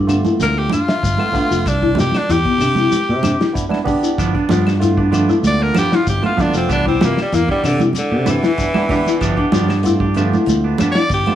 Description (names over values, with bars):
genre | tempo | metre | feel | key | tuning
afrobeat | 95 BPM | 4/4 | straight | G mixolydian | A4 = 440 Hz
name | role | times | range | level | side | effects
fingered electric bass | bass | 0.0-11.2 s | F1 to C3 | -18 LUFS | equal | none
barky tine electric piano | accompaniment | 0.1-11.3 s | A3 to G4 | -24 LUFS | right 5 dB | none
vibraphone with soft mallets | arpeggios | 0.1-11.0 s | B3 to E5 | -20 LUFS | left 5 dB | none
warm soul drum kit | drums | 0.1-11.3 s | hi-hat, kick drum, snare drum | -23 LUFS | equal | none
claves | percussion | 0.1-11.3 s | none | -33 LUFS | left 5 dB | none
congas | percussion | 0.1-11.3 s | none | -22 LUFS | right 4 dB | none
shekere | percussion | 0.1-11.3 s | none | -28 LUFS | left 3 dB | none
raspy tenor saxophone | melody | 0.4-11.3 s | D3 to D5 | -19 LUFS | equal | none
semi-hollow electric guitar | stabs | 4.2-11.3 s | E3 to G4 | -23 LUFS | right 6 dB | spring reverb
room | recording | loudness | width
light reverb, small room ambience | none | -14 LUFS | side -11 dB against mid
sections
0.0-11.3 A section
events
tenor saxophone solo 0.0-11.3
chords
0.0 G7; 1.7 Cmaj7; 4.2 G7; 6.7 Cmaj7; 9.2 G7